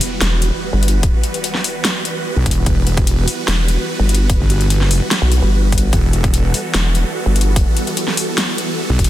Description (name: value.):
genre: heavy wobble dubstep.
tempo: 147 BPM.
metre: 4/4.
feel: half-time.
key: E minor.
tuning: A4 = 440 Hz.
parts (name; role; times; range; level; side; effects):
supersaw chords; sustained chords; 0.0-9.1 s; E3 to B4; -22 LUFS; right 1 dB; phaser, sidechain pumping.
dubstep drum kit; drums; 0.0-9.1 s; hi-hat, snare drum; -20 LUFS; left 1 dB; none.
impact; sound effects; 0.0-1.0 s; none; -33 LUFS; equal; none.
vowel-sweep wobble bass; bass; 0.2-7.7 s; E1 to B1; -14 LUFS; equal; chorus, overdrive.
electronic kick drum; drums; 1.0-9.1 s; none; -16 LUFS; equal; overdrive.
wobble bass; bass; 2.4-9.1 s; E1 to B1; -15 LUFS; equal; chorus, overdrive.
room: little or no reverb.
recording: dense, heavily limited modern master.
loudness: -14 LUFS.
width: side -14 dB against mid.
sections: 0.0-9.1 A section.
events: impact 0.0-1.0.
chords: 0.0 Emadd9.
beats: 0.21 0.62 | 1.03 1.44 1.85 2.25 | 2.66 3.07 3.48 3.89 | 4.30 4.70 5.11 5.52 | 5.93 6.34 6.75 7.15 | 7.56 7.97 8.38 8.79.